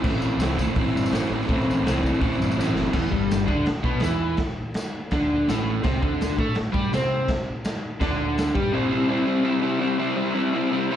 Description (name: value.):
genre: garage rock duo or trio.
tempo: 166 BPM.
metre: 4/4.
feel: straight.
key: unclear.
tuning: A4 = 441 Hz.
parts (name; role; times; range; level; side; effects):
crunchy overdriven guitar; riff; 0.0-11.0 s; E2 to C5; -22 LUFS; equal; slapback echo.
growling fingered electric bass; bass; 0.0-8.7 s; E1 to C3; -27 LUFS; equal; overdrive.
raw garage drum kit; drums; 0.0-8.6 s; crash cymbal, hi-hat, kick drum, snare drum; -27 LUFS; equal; none.
tambourine; percussion; 0.1-8.5 s; none; -43 LUFS; left 2 dB; none.
room: small room ambience.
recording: live gig heard through the venue's PA, club reverb.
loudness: -21 LUFS.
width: side -10 dB against mid.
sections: 0.0-2.9 A section; 2.9-8.7 B section; 8.7-11.0 C section.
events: drum fill 2.6-2.9.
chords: 0.0 Am; 2.9 Em; 5.8 C5; 8.7 C.